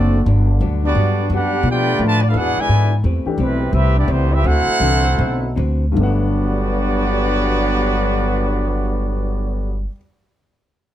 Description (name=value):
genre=jazz, big band swing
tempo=148-174 BPM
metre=4/4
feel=swing 64% on 8ths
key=G major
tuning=A4 = 440 Hz
part: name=warm trumpet section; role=melody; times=0.0-9.9 s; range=G3 to A5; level=-21 LUFS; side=right 1 dB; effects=none
part: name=mellow trombone section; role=second line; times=0.0-9.9 s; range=G2 to G4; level=-24 LUFS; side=equal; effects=none
part: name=vintage hollow-body jazz guitar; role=accompaniment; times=0.0-10.0 s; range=G2 to B4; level=-27 LUFS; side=left 3 dB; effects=none
part: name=mellow trombone section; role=sustained chords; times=0.0-3.0 s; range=D3 to F#4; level=-29 LUFS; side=left 3 dB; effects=none
part: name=upright bass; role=bass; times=0.0-9.8 s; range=F#1 to B2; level=-18 LUFS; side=equal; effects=none
part: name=dark baby grand piano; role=accompaniment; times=3.3-9.9 s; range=G2 to F#5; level=-26 LUFS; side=left 4 dB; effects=none
room=light reverb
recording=close, detailed microphones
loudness=-15 LUFS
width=side -12 dB against mid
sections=0.0-3.0 A section; 3.0-6.0 B section; 6.0-9.2 C section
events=slowing down 3.0-6.0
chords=0.3 Gmaj7; 1.6 Bm7b5; 2.3 E7; 3.0 Am9; 4.4 D13; 6.0 Gmaj7